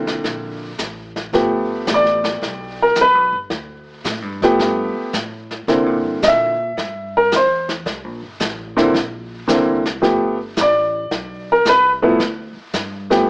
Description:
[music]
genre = jazz piano trio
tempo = 110 BPM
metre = 4/4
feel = swing 68% on 8ths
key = G mixolydian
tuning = A4 = 443 Hz
[part]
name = warm upright piano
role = melody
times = 0.0-13.3 s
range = D3 to E5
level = -15 LUFS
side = equal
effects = none
[part]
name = upright bass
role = bass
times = 0.0-13.3 s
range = G1 to C3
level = -31 LUFS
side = equal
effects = none
[part]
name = vintage brush drum kit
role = drums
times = 0.1-13.3 s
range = brushed snare drum, hi-hat, kick drum, snare drum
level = -24 LUFS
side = equal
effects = none
[sound]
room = light reverb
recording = small speaker sound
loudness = -15 LUFS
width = side -28 dB against mid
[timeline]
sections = 0.0-13.3 A section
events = upright piano solo 0.0-13.3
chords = 0.0 C9; 1.3 G9; 5.7 C9; 10.0 Gadd9

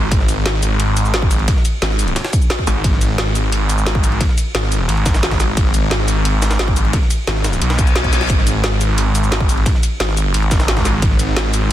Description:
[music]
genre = dark technical drum and bass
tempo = 176 BPM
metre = 4/4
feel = straight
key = G# minor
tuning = A4 = 441 Hz
[part]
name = snarling distorted saw bass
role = bass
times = 0.0-11.7 s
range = G#1 to B1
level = -16 LUFS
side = equal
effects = distortion, tube saturation
[part]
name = breakbeat sampler-style drum kit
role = drums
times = 0.1-11.6 s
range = ride cymbal, snare drum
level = -28 LUFS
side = equal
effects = none
[part]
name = drum and bass drum kit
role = drums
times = 0.1-11.6 s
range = cabasa, hi-hat, ride cymbal, snare drum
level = -22 LUFS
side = equal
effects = none
[part]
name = electronic kick drum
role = drums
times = 0.1-11.1 s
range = none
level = -16 LUFS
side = equal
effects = none
[part]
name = reverse cymbal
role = sound effects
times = 7.7-8.3 s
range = none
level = -24 LUFS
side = left 4 dB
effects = none
[sound]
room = little or no reverb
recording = dense, heavily limited modern master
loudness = -14 LUFS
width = side -12 dB against mid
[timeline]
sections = 0.0-11.7 A section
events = reverse cymbal 7.7-8.3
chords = none

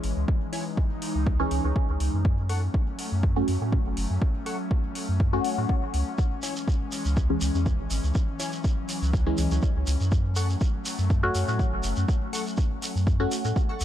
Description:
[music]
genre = dub techno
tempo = 122 BPM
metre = 4/4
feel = swing 54% on 16ths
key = unclear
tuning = A4 = 440 Hz
[part]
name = airy breathy pad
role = sustained chords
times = 0.0-13.8 s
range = E3 to D#4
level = -34 LUFS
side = left 3 dB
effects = chorus, sidechain pumping
[part]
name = soft dub sub bass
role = bass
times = 0.0-13.8 s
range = F#1 to A2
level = -26 LUFS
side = equal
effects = sidechain pumping
[part]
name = electronic hi-hat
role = drums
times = 0.0-13.8 s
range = none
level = -39 LUFS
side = equal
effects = overdrive
[part]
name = electronic kick drum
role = drums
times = 0.3-13.7 s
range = none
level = -25 LUFS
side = equal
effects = overdrive
[part]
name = wavetable chord stab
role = riff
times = 0.5-13.8 s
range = E4 to C#6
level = -40 LUFS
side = left 2 dB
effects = sidechain pumping, dub echo
[part]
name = filtered dub chord stab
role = stabs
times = 1.4-13.4 s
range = E3 to F#4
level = -30 LUFS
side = equal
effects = phaser, sidechain pumping, dub echo
[part]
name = shekere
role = percussion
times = 6.2-13.8 s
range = none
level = -36 LUFS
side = right 2 dB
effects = none
[sound]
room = little or no reverb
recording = dark, warm production, faint mains hum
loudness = -23 LUFS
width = side -11 dB against mid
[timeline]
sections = 0.0-13.8 A section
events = none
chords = 0.0 C#m; 2.2 F#m; 6.2 C#m; 10.1 F#m

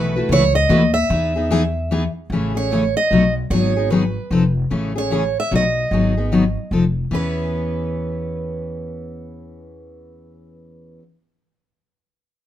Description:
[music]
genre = acoustic string swing (jazz manouche)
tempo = 150 BPM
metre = 3/4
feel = swing 62% on 8ths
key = E major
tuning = A4 = 438 Hz
[part]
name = picked steel-string acoustic guitar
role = melody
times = 0.0-11.0 s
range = B4 to E5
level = -22 LUFS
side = right 3 dB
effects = none
[part]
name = picked steel-string acoustic guitar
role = accompaniment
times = 0.0-11.0 s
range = B2 to B4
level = -20 LUFS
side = left 2 dB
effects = none
[part]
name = upright bass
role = bass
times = 0.0-11.0 s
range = F1 to E2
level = -22 LUFS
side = equal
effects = none
[sound]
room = moderate club reverb, RT60 0.8 s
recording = minimal, uncompressed stereo recording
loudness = -16 LUFS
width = side -11 dB against mid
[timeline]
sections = 0.0-2.3 A section; 2.3-7.1 B section; 7.1-9.5 C section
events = none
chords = 0.0 B7sus4; 1.1 Emaj7; 2.3 Amaj7; 3.1 B7; 3.5 G#m7; 4.3 F7; 4.7 Amaj7; 5.5 B7; 5.9 G#m7; 6.7 F7; 7.1 E6

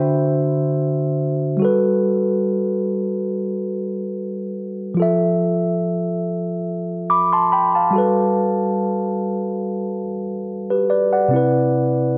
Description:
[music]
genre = R&B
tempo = 71 BPM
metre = 4/4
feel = swing 54% on 16ths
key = G major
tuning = A4 = 440 Hz
[part]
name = mellow tine electric piano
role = solo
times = 0.0-12.2 s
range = C3 to D6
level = -20 LUFS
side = equal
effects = none
[sound]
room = moderate lush hall reverb, RT60 2.7 s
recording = none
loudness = -20 LUFS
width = mono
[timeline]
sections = 0.0-1.6 A section; 1.6-12.2 B section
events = none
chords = 0.0 D7; 1.6 Gmaj9; 5.0 Fmaj7; 7.9 Gmaj9; 11.3 Cmaj7

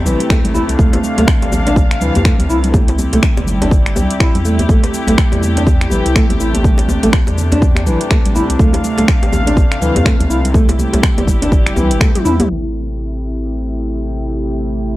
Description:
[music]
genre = afro house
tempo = 123 BPM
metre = 4/4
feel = swing 60% on 16ths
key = A minor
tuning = A4 = 439 Hz
[part]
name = dark studio string section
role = sustained chords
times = 0.0-15.0 s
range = C3 to F5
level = -21 LUFS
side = left 1 dB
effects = sidechain pumping
[part]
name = warm sub bass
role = bass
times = 0.0-15.0 s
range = G1 to F2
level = -18 LUFS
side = equal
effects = sidechain pumping
[part]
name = nylon-string guitar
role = arpeggios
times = 0.1-12.3 s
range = E3 to E4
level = -18 LUFS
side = equal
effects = sidechain pumping, analog delay
[part]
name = house drum kit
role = drums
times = 0.1-15.0 s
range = crash cymbal, finger snaps, hi-hat, shaker, toms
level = -21 LUFS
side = equal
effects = none
[part]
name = congas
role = percussion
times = 0.1-12.5 s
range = none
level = -24 LUFS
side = right 1 dB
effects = none
[part]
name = electronic kick drum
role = drums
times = 0.3-12.1 s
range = none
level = -12 LUFS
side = equal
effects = none
[part]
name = djembe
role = percussion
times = 0.3-12.5 s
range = none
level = -22 LUFS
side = left 1 dB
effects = none
[sound]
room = studio ambience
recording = dry, gritty hardware recording, low-pass filter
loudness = -11 LUFS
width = side -17 dB against mid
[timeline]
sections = 0.0-12.5 A section; 12.5-15.0 B section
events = drum fill 12.1-12.5; filter sweep 12.5-15.0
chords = 0.0 Am7; 0.8 Dm7; 2.7 C; 4.7 Am7; 8.6 Dm7; 10.5 C; 12.5 Am7

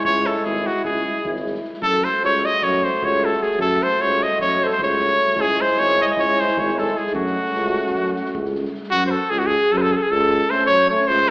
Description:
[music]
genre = balkan folk, Balkan brass band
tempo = 304 BPM (eighths)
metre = 9/8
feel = straight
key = F# dorian sharp4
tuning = A4 = 440 Hz
[part]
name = bright trumpet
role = melody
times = 0.0-11.3 s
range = F#4 to D#5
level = -19 LUFS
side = equal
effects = none
[part]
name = mellow clarinet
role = second line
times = 0.0-11.3 s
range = F#4 to D#5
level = -25 LUFS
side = equal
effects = none
[part]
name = clear euphonium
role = accompaniment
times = 0.0-11.1 s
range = G#3 to A3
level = -28 LUFS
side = right 1 dB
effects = none
[part]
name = mellow French horn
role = accompaniment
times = 0.0-11.1 s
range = C#4 to F#4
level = -28 LUFS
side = left 1 dB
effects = none
[part]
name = mellow tuba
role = bass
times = 0.0-11.3 s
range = G#1 to F#2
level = -25 LUFS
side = equal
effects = none
[part]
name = soft-mallet drum kit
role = percussion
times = 0.0-8.9 s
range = kick drum, snare drum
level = -37 LUFS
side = equal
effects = none
[sound]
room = wet recital hall reverb, RT60 1.5 s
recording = heard from further back in the room, AM radio sound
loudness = -17 LUFS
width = side -26 dB against mid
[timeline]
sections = 0.0-8.9 A section; 8.9-11.3 B section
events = none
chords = 0.0 C#m; 1.8 F#m; 5.4 C#m; 7.1 F#m

